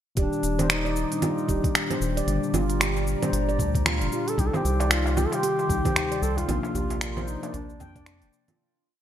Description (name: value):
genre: organic downtempo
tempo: 114 BPM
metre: 4/4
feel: swing 59% on 16ths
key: unclear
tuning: A4 = 440 Hz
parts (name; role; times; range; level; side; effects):
- mellow duduk; melody; 0.2-8.3 s; D4 to A4; -30 LUFS; left 1 dB; vintage 12-bit sampler grit, digital delay
- muted felt-like synth keys; accompaniment; 0.2-8.6 s; Bb2 to D5; -31 LUFS; left 4 dB; chorus, vintage 12-bit sampler grit, sidechain pumping, digital delay
- warbly tape-like pad; sustained chords; 0.8-8.6 s; Eb4 to D6; -37 LUFS; equal; chorus, built-in reverb, sidechain pumping
- handpan; arpeggios; 0.2-8.6 s; F4 to G5; -32 LUFS; right 4 dB; digital delay
- round analog bass; bass; 0.2-8.3 s; Eb1 to F2; -28 LUFS; equal; sidechain pumping
- electronic kick drum; drums; 0.2-8.0 s; none; -26 LUFS; equal; small room ambience
- organic electronic drum kit; drums; 0.2-8.6 s; cabasa, congas, finger snaps, hi-hat; -27 LUFS; right 1 dB; small room ambience, gated reverb
- darbuka; percussion; 4.5-8.6 s; none; -39 LUFS; left 1 dB; none
room: moderate lush hall reverb, RT60 1.9 s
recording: bright 1980s-style digital production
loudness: -22 LUFS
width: side -10 dB against mid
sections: 0.2-8.6 groove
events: fade-out 5.8-8.6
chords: 0.2 Ebmaj7; 2.3 Gm; 4.4 Cm; 6.5 Bbadd9